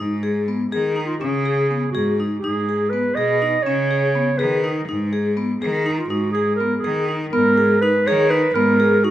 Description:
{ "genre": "contemporary instrumental, chamber music in an uneven meter", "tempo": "245 BPM (eighths)", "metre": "5/8", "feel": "straight", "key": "G# minor", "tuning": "A4 = 440 Hz", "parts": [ { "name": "vibraphone with medium mallets", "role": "arpeggios", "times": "0.0-9.1 s", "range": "B3 to G#4", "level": "-22 LUFS", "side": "left 3 dB", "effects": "none" }, { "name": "bright cello", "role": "bass", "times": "0.0-9.1 s", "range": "G#2 to D#3", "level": "-22 LUFS", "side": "equal", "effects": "none" }, { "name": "mellow clarinet", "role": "melody", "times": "0.9-9.1 s", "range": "D#4 to D#5", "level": "-20 LUFS", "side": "right 3 dB", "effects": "none" } ], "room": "light reverb", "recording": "minimal, uncompressed stereo recording", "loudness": "-17 LUFS", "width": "side -12 dB against mid", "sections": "0.0-7.3 A section; 7.3-9.1 B section", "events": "none", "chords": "0.0 G#5; 1.2 C#5; 2.4 G#m; 3.6 C#5; 4.9 G#m", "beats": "0.22 0.46 0.71 0.95 | 1.20 1.44 1.69 1.93 2.18 | 2.42 2.67 2.92 3.16 3.40 | 3.65 3.90 4.14 4.39 4.63 | 4.88 5.12 5.37 5.61 5.86 | 6.10 6.34 6.59 6.83 7.08 | 7.32 7.57 7.81 8.06 8.30 | 8.55 8.79 9.03" }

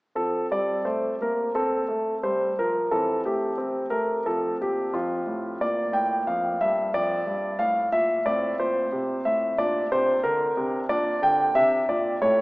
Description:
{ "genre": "classical, baroque-style suite movement for grand piano", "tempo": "90 BPM", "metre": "4/4", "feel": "rubato", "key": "F major", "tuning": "A4 = 441 Hz", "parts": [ { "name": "warm concert grand piano", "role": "solo", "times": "0.2-12.4 s", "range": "F2 to G5", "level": "-22 LUFS", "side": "equal", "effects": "none" } ], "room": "wet church reverb, RT60 3.3 s", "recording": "small speaker sound", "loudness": "-22 LUFS", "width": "side -22 dB against mid", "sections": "0.2-12.4 A section", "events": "none", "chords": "0.2 F; 2.9 C/E; 4.3 F; 5.6 Bb; 8.3 Amadd11; 9.6 Bb69", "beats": "| 0.17 0.86 1.55 2.24 | 2.92 3.58 4.26 4.95 | 5.61 6.27 6.94 7.59 | 8.26 8.93 9.58 10.23 | 10.89 11.55 12.21" }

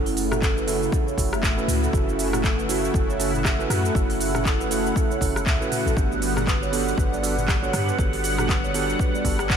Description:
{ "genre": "afro house", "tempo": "119 BPM", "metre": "4/4", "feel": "swing 57% on 16ths", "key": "F# phrygian", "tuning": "A4 = 440 Hz", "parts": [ { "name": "warm analog pad", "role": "sustained chords", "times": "0.0-9.6 s", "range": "C#3 to F#5", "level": "-27 LUFS", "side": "left 1 dB", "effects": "chorus, sidechain pumping" }, { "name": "marimba with soft mallets", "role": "arpeggios", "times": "0.0-9.6 s", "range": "E4 to F#5", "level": "-30 LUFS", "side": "right 2 dB", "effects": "sidechain pumping, diffuse ambient delay" }, { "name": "mellow tine electric piano", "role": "stabs", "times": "0.0-9.4 s", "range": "B3 to A4", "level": "-29 LUFS", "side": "right 6 dB", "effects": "vintage 12-bit sampler grit, sidechain pumping, diffuse ambient delay" }, { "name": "warm 808-style bass", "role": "bass", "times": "0.0-9.6 s", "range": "F#1 to G2", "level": "-28 LUFS", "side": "left 1 dB", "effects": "sidechain pumping" }, { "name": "afro-pop drum kit", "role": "drums", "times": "0.1-9.6 s", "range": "handclaps, hi-hat, rim click, shaker, toms", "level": "-28 LUFS", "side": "equal", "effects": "none" }, { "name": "electronic kick drum", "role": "drums", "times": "0.4-9.6 s", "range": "none", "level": "-24 LUFS", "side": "left 1 dB", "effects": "overdrive" } ], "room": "moderate cathedral reverb, RT60 4.6 s", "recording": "dreamy mix soaked in reverb", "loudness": "-20 LUFS", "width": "side -8 dB against mid", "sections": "0.0-9.6 A section", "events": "none", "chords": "0.0 F#m7; 6.0 Gmaj7", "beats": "0.42 0.93 1.43 | 1.93 2.44 2.94 3.45 | 3.95 4.46 4.96 5.46 | 5.97 6.47 6.98 7.48 | 7.99 8.49 8.99 9.50" }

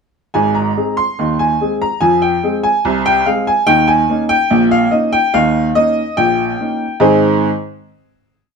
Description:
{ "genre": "ragtime piano", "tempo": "72 BPM", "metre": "2/4", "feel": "straight", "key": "Ab major", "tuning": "A4 = 440 Hz", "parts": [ { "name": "clear upright piano", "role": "solo", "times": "0.3-7.5 s", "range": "Ab1 to C6", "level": "-12 LUFS", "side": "equal", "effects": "none" } ], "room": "light reverb", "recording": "band playing live in one room", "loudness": "-12 LUFS", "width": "side -5 dB against mid", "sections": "0.3-7.0 A section; 7.0-8.6 final chord", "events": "none", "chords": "0.3 Ab; 2.0 Fm; 3.7 Eb7; 7.0 Ab", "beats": "| 0.35 1.18 | 2.01 2.84 | 3.67 4.50 | 5.34 6.17 | 7.02" }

